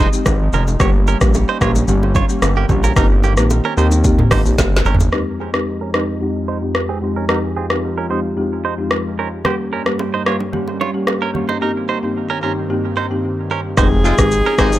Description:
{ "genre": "afrobeats", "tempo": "111 BPM", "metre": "4/4", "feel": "straight", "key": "F minor", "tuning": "A4 = 436 Hz", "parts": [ { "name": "warm horn section", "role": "second line", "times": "0.0-0.1, 14.0-14.8 s", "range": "C3 to Ab4", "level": "-22 LUFS", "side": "left 4 dB", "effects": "none" }, { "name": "folk marimba with soft mallets", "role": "accompaniment", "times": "0.0-14.8 s", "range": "F2 to G5", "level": "-21 LUFS", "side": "left 2 dB", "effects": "low-pass filter, dub echo" }, { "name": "warm analog pad", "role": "sustained chords", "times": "0.0-14.8 s", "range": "F2 to F4", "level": "-27 LUFS", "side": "right 1 dB", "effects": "chorus, low-pass filter" }, { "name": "direct-recorded clean electric guitar", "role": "riff", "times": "0.0-14.7 s", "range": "Bb3 to Db5", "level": "-23 LUFS", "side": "right 7 dB", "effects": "low-pass filter, dub echo" }, { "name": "fat analog bass", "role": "bass", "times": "0.0-5.1, 13.8-14.8 s", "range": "F1 to Eb2", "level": "-16 LUFS", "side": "equal", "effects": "none" }, { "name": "bongos and congas", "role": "percussion", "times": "0.0-5.1, 9.4-11.6 s", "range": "none", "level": "-27 LUFS", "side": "right 3 dB", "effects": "none" }, { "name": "afro-pop drum kit", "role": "drums", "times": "0.1-14.8 s", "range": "hi-hat, kick drum, rim click, shaker, snare drum, toms", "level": "-17 LUFS", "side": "equal", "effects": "overdrive" }, { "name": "breathy alto saxophone", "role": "melody", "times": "13.8-14.8 s", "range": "Ab4", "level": "-23 LUFS", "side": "equal", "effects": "dub echo" } ], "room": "studio reverb", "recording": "echo-heavy mix", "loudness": "-14 LUFS", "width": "side -14 dB against mid", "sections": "0.0-5.1 A section; 5.1-13.8 B section; 13.8-14.8 A section", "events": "drum fill 4.6-5.1; filter sweep 5.1-13.8", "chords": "0.0 Fm7; 0.8 Gdim; 3.0 Cm7/G; 5.1 Fm7; 9.4 Gdim; 11.6 Cm7/G; 13.8 Fm7" }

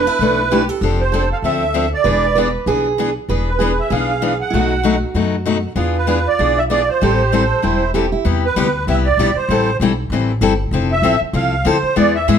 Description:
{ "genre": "acoustic string swing (jazz manouche)", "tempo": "194 BPM", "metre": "4/4", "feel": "swing 58% on 8ths", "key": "unclear", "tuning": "A4 = 440 Hz", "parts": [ { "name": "musette accordion", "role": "melody", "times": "0.0-12.4 s", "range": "B4 to F#5", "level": "-18 LUFS", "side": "right 4 dB", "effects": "plate reverb" }, { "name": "picked steel-string acoustic guitar", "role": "second line", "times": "0.0-8.2 s", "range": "E4 to B4", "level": "-22 LUFS", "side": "right 6 dB", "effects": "none" }, { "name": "upright bass", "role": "bass", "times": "0.0-12.4 s", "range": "E1 to G#2", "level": "-20 LUFS", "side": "equal", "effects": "none" }, { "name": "picked steel-string acoustic guitar", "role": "accompaniment", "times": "0.2-12.4 s", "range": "B2 to A4", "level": "-19 LUFS", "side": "left 6 dB", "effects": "none" } ], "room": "moderate studio reverb, RT60 0.8 s", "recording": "none", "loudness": "-14 LUFS", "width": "side -8 dB against mid", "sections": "0.0-8.3 A section; 8.3-12.4 B section", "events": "none", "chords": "0.0 E7sus4; 0.8 Dm7/F; 2.0 E7; 4.5 B7; 5.8 E7b9; 7.0 Am7; 8.3 Cmaj7; 9.5 Am7; 10.7 Fmaj7" }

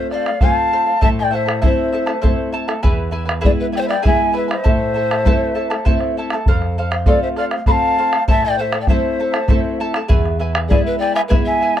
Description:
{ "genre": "andean folk, Andean ensemble", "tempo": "99 BPM", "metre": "3/4", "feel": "straight", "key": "unclear", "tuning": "A4 = 440 Hz", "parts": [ { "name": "mellow large quena", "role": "melody", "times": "0.0-11.8 s", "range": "D5 to B5", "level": "-20 LUFS", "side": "left 1 dB", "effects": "none" }, { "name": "polished pan flute", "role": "second line", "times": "0.0-11.8 s", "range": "G#4 to F5", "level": "-22 LUFS", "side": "left 2 dB", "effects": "none" }, { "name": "charango", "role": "accompaniment", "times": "0.0-11.8 s", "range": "E4 to A5", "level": "-24 LUFS", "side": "right 2 dB", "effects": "none" }, { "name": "nylon-string guitar", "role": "accompaniment", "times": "0.0-11.8 s", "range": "E2 to F4", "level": "-22 LUFS", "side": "left 1 dB", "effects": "none" }, { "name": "bombo", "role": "percussion", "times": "0.1-11.8 s", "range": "none", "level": "-17 LUFS", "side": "equal", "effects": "none" } ], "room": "little or no reverb", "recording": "close, detailed microphones", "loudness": "-14 LUFS", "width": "side -10 dB against mid", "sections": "0.0-11.8 A section", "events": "none", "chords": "0.0 F; 1.0 Am; 2.8 E; 4.6 Am; 6.5 F; 8.3 Am; 10.1 E" }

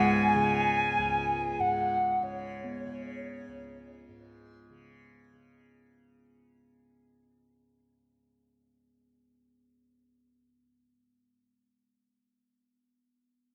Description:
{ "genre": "world meditative, free-time meditation music", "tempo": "free time", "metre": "none", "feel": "none", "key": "unclear", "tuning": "A4 = 439 Hz", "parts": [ { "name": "alto ocarina", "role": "melody", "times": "0.0-3.9 s", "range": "C#5 to G#5", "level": "-30 LUFS", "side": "equal", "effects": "dub echo" }, { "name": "tanpura", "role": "drone", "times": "0.0-12.5 s", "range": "C#2 to C#3", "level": "-37 LUFS", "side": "equal", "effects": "none" }, { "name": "bronze singing bowl", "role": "texture", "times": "0.0-6.3 s", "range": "G#3 to B3", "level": "-37 LUFS", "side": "equal", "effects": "none" } ], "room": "wet spring reverb, RT60 1.6 s, small room ambience", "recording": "echo-heavy mix", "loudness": "-29 LUFS", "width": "mono", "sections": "0.0-5.9 A section", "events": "fade-out 0.0-5.9", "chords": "none" }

